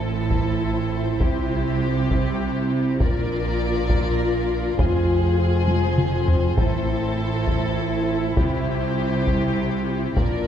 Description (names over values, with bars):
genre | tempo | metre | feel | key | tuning
cinematic, epic orchestral film score | 67 BPM (dotted quarters) | 6/8 | straight | unclear | A4 = 442 Hz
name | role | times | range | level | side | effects
warm symphonic violin section | melody | 0.0-10.5 s | C5 to D5 | -32 LUFS | left 7 dB | none
rich symphonic violin section | second line | 0.0-10.5 s | G4 to Bb4 | -31 LUFS | left 2 dB | none
warm studio viola section | accompaniment | 0.0-10.5 s | E4 to F4 | -28 LUFS | left 1 dB | none
warm French horn section | sustained chords | 0.0-10.5 s | Bb3 to F4 | -29 LUFS | left 2 dB | none
clear symphonic cello section | bass | 0.0-10.5 s | F2 to C3 | -26 LUFS | right 2 dB | none
rich symphonic double bass section | bass | 0.0-10.5 s | F1 to C2 | -26 LUFS | right 3 dB | none
solo taiko drums | drums | 0.3-10.5 s | none | -24 LUFS | equal | none
room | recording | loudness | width
wet scoring stage reverb, RT60 1.5 s | heard from further back in the room | -19 LUFS | side -9 dB against mid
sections
0.0-10.5 A section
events
drum fill 5.7-6.6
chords
0.0 Am; 1.2 C; 3.0 Bb; 4.8 Fm; 6.6 Am; 8.4 C